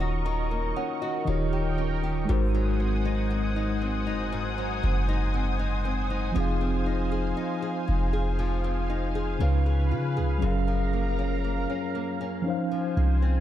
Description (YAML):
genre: contemporary R&B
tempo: 59 BPM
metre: 4/4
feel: straight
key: unclear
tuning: A4 = 440 Hz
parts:
  - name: mellow tine electric piano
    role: accompaniment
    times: 0.0-13.4 s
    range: Db3 to Bb5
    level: -30 LUFS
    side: equal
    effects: medium stereo tremolo
  - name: lush unison pad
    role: sustained chords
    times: 0.0-13.4 s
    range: Bb4 to Eb6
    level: -34 LUFS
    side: equal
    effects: chorus, phaser
  - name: nylon-string guitar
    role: arpeggios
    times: 0.0-13.4 s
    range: Gb2 to Ab4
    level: -34 LUFS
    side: left 4 dB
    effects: digital delay
  - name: warm 808-style bass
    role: bass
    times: 0.0-13.4 s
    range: Eb1 to Db3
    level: -26 LUFS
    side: equal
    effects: none
room: little or no reverb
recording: dark, warm production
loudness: -24 LUFS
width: side -12 dB against mid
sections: 0.0-13.4 A section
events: none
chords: 0.0 Ebm7; 1.3 Eb7; 2.3 Ab7; 6.4 Fm7; 9.4 Db7; 10.4 Gbmaj7; 12.5 Dbmaj7